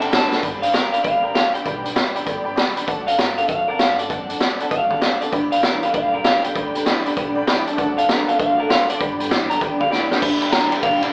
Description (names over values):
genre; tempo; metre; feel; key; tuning
rockabilly; 196 BPM; 4/4; swing 64% on 8ths; G major; A4 = 438 Hz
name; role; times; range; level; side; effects
electric guitar through a small old amp; melody; 0.0-11.1 s; G4 to Bb5; -23 LUFS; equal; none
honky-tonk upright piano; accompaniment; 0.0-11.1 s; D5 to D6; -29 LUFS; equal; none
picked steel-string acoustic guitar; accompaniment; 0.0-11.1 s; G2 to A4; -32 LUFS; equal; none
electric guitar through a small old amp; riff; 0.0-0.4, 5.3-11.1 s; G2 to C4; -27 LUFS; equal; phaser
upright bass; bass; 0.0-11.1 s; G1 to A2; -42 LUFS; equal; none
raw garage drum kit; drums; 0.0-11.1 s; crash cymbal, hi-hat, kick drum, ride cymbal, snare drum; -23 LUFS; equal; none
room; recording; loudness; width
moderate large studio reverb, RT60 0.9 s; band playing live in one room, AM radio sound; -19 LUFS; mono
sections
0.4-10.2 A section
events
drum fill 0.3, 9.9-10.2; honky-tonk piano fill 6.9-7.8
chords
0.4 G; 2.9 D7; 5.3 G; 7.8 D7; 9.0 G